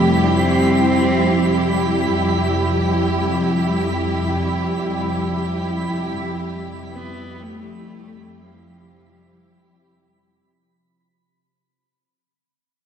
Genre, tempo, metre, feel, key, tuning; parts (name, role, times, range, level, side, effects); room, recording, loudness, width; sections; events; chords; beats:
ambient; free time; A4 = 441 Hz
warm cello; melody; 0.0-10.0 s; F3 to D4; -23 LUFS; left 1 dB; ping-pong delay
clear symphonic string section; sustained chords; 0.0-10.5 s; G3 to G4; -21 LUFS; right 1 dB
rich symphonic cello section; bass; 0.0-10.4 s; F2; -23 LUFS; equal
bowed-like drone; drone; 0.0-10.6 s; C3 to F3; -26 LUFS; left 1 dB; built-in reverb
twinkling granular texture; texture; 0.0-10.5 s; B5; -29 LUFS; right 3 dB; built-in reverb
wet lush hall reverb, RT60 2.6 s; dark, warm production; -17 LUFS; side -8 dB against mid
0.0-10.5 A section
fade-out 0.0-10.5
0.0 Em/F
free time